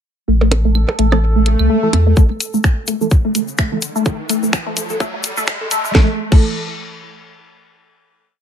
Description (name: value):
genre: minimal techno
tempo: 127 BPM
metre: 4/4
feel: swing 57% on 16ths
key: unclear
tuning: A4 = 441 Hz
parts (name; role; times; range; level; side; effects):
- resonant blip pluck; riff; 0.3-6.4 s; A3; -20 LUFS; equal; phaser, wide subtle chorus, sidechain pumping, dub echo
- saturated sub bass; bass; 0.3-2.1 s; A1 to E2; -13 LUFS; equal; sidechain pumping
- bubbling stepped-filter texture; texture; 0.6-2.2 s; A4; -28 LUFS; right 4 dB; chorus, built-in reverb, sidechain pumping
- electronic percussion blips, claves and rim click; percussion; 0.4-2.0 s; none; -22 LUFS; right 4 dB; digital delay
- garage drum kit; drums; 0.5-6.4 s; crash cymbal, finger snaps, hi-hat, snare drum; -21 LUFS; equal; none
- wavetable chord stab; stabs; 1.1-8.4 s; E3 to A4; -24 LUFS; right 3 dB; digital delay
- swell and riser; sound effects; 1.4-5.9 s; none; -24 LUFS; equal; none
- electronic kick drum; drums; 2.2-6.4 s; none; -12 LUFS; equal; none
- egg shaker; percussion; 2.2-5.9 s; none; -26 LUFS; left 7 dB; none
room: moderate studio reverb, RT60 0.6 s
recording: high-pass filter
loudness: -13 LUFS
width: side -9 dB against mid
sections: 0.3-2.2 intro; 2.2-5.9 build; 5.9-8.4 final chord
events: swell 1.4-2.2; build-up 2.2-5.9; filter sweep on synth arpeggio sound 2.2-5.9; filter sweep on synth stab 2.2-5.9; filter sweep 2.2-5.9; riser 3.2-5.9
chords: 0.3 A5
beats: | 0.28 0.75 1.22 1.70 | 2.17 2.64 3.11 3.59 | 4.06 4.53 5.00 5.48 | 5.95 6.42 6.89 7.37 | 7.84 8.31